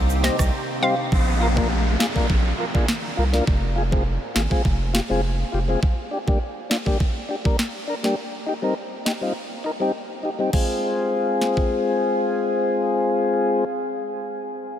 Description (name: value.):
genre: dancehall.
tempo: 102 BPM.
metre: 4/4.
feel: straight.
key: F dorian.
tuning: A4 = 440 Hz.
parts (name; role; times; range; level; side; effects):
deep dark ambient pad; sustained chords; 0.0-1.1 s; C3 to G4; -32 LUFS; right 1 dB; chorus, built-in reverb, sidechain pumping.
saturated sub bass; bass; 0.0-5.8 s; F1 to C2; -22 LUFS; equal; none.
egg shaker; percussion; 0.1-0.5 s; none; -41 LUFS; right 8 dB; none.
hollow square pluck; melody; 0.2-0.9 s; Eb5 to F5; -29 LUFS; right 1 dB; chorus, diffuse ambient delay.
mellow tonewheel organ; accompaniment; 0.2-13.6 s; G3 to C5; -23 LUFS; left 2 dB; slow rotary speaker.
island pop drum kit; drums; 0.2-11.7 s; crash cymbal, kick drum, rim click, snare drum; -24 LUFS; equal; overdrive.
downlifter; sound effects; 1.1-5.8 s; none; -30 LUFS; left 2 dB; none.
room: moderate huge ambient reverb, RT60 8.2 s.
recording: dreamy mix soaked in reverb.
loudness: -20 LUFS.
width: side -10 dB against mid.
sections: 0.0-1.1 A section; 1.1-10.5 B section; 10.5-12.9 C section.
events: break 0.5-1.1; drums muted 9.4-10.5.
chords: 0.0 Cm; 1.1 Bb; 3.5 Fm; 5.8 Gm; 8.2 Cm; 10.5 Fm.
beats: 0.53 | 1.12 1.71 2.30 2.88 | 3.47 4.06 4.65 5.24 | 5.83 6.41 7.00 7.59 | 8.18 8.77 9.36 9.94 | 10.53 11.12 11.71 12.30.